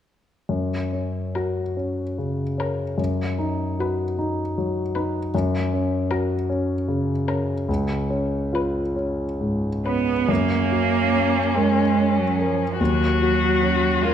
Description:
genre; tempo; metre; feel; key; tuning
classical, slow romantic movement for piano quintet; 44-52 BPM (dotted quarters); 6/8; rubato; F# major; A4 = 440 Hz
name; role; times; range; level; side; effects
warm concert grand piano; accompaniment; 0.5-14.1 s; C#2 to A#4; -22 LUFS; left 1 dB; none
warm violin; melody; 1.3-14.1 s; C#4 to B4; -25 LUFS; left 6 dB; none
rich cello; second line; 9.9-14.1 s; E#3 to B3; -21 LUFS; right 8 dB; none
room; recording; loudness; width
moderate recital hall reverb, RT60 1.7 s; none; -20 LUFS; side -9 dB against mid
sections
0.5-10.3 A section; 10.3-14.1 B section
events
none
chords
0.5 F#; 3.0 B/F#; 5.3 F#; 7.7 C#7; 10.3 F#; 12.8 D#m7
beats
| 0.49 1.77 | 2.99 4.18 | 5.33 6.49 | 7.68 8.97 | 10.30 11.56 | 12.80 14.04

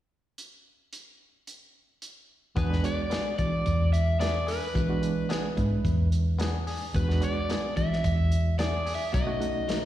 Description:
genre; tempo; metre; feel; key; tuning
straight-eighth soul blues; 110 BPM; 4/4; swing 53% on 16ths; E mixolydian; A4 = 440 Hz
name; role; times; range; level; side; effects
warm soul drum kit; drums; 0.4-9.8 s; hi-hat, kick drum, snare drum; -32 LUFS; equal; none
crunchy overdriven guitar; melody; 2.6-9.9 s; B4 to E5; -32 LUFS; left 1 dB; spring reverb, slapback echo
bright reed electric piano; accompaniment; 2.6-9.9 s; G#3 to G#4; -34 LUFS; right 6 dB; fast tremolo, slapback echo
direct-recorded clean electric guitar; stabs; 2.6-9.9 s; F#3 to G#4; -38 LUFS; left 6 dB; slapback echo
vintage muted fingered electric bass; bass; 2.6-9.8 s; B1 to E3; -26 LUFS; equal; none
room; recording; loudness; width
studio ambience; live gig heard through the venue's PA, recital hall reverb; -24 LUFS; side -13 dB against mid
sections
0.4-2.6 A section; 2.6-9.9 B section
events
none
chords
0.4 N.C.; 2.6 E7; 9.1 B7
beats
| 0.37 0.92 1.47 2.02 | 2.56 3.11 3.66 4.21 | 4.75 5.30 5.85 6.40 | 6.95 7.49 8.04 8.59 | 9.14 9.68

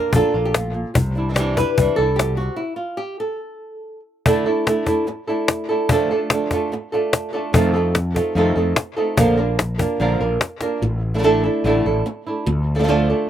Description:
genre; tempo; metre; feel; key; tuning
flamenco; 146 BPM; 4/4; straight; unclear; A4 = 439 Hz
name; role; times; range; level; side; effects
flamenco guitar; melody; 0.0-13.3 s; A2 to B4; -20 LUFS; right 1 dB; slapback echo
flamenco guitar; stabs; 0.0-13.3 s; C3 to F4; -24 LUFS; right 3 dB; slapback echo
fretless electric bass; bass; 0.1-2.5, 7.5-13.1 s; A1 to F2; -21 LUFS; left 1 dB; none
cajon; percussion; 0.1-10.7 s; none; -20 LUFS; left 2 dB; none
room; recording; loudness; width
little or no reverb; recorded outdoors, with no room sound; -17 LUFS; side -10 dB against mid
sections
0.0-4.3 A section; 4.3-10.8 B section; 10.8-13.3 B section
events
stop 2.6-4.3; drum fill 10.6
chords
0.0 Bb; 1.0 Cadd9; 2.6 N.C.; 4.3 Asus4; 5.9 Dm; 7.5 F7; 9.2 Bb; 10.8 Asus4; 12.5 Dm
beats
0.14 0.55 | 0.96 1.37 1.79 2.20 | 2.61 3.02 3.43 3.84 | 4.25 4.67 5.08 5.49 | 5.90 6.31 6.72 7.13 | 7.54 7.95 8.36 8.77 | 9.18 9.59 10.00 10.41 | 10.82 11.23 11.64 12.05 | 12.46 12.87 13.28

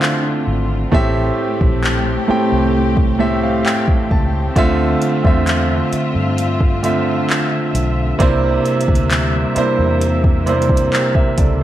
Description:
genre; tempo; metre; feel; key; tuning
contemporary R&B; 66 BPM; 4/4; straight; D minor; A4 = 440 Hz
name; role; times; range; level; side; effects
clear concert grand piano; accompaniment; 0.0-11.6 s; A2 to A5; -17 LUFS; right 2 dB; none
warm studio string section; sustained chords; 0.0-11.6 s; C3 to E5; -24 LUFS; left 4 dB; sidechain pumping
smooth R&B drum kit; drums; 0.0-11.6 s; handclaps, hi-hat, kick drum; -17 LUFS; equal; none
vintage muted fingered electric bass; bass; 0.5-11.6 s; G#1 to G2; -20 LUFS; equal; none
room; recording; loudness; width
light reverb; none; -14 LUFS; side -12 dB against mid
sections
0.0-11.6 A section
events
grand piano fill 2.7-4.6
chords
0.0 Dm9; 0.9 Am7; 4.6 Dm9; 8.2 C7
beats
0.02 | 0.93 1.83 2.74 3.65 | 4.56 5.47 6.38 7.29 | 8.20 9.11 10.02 10.93

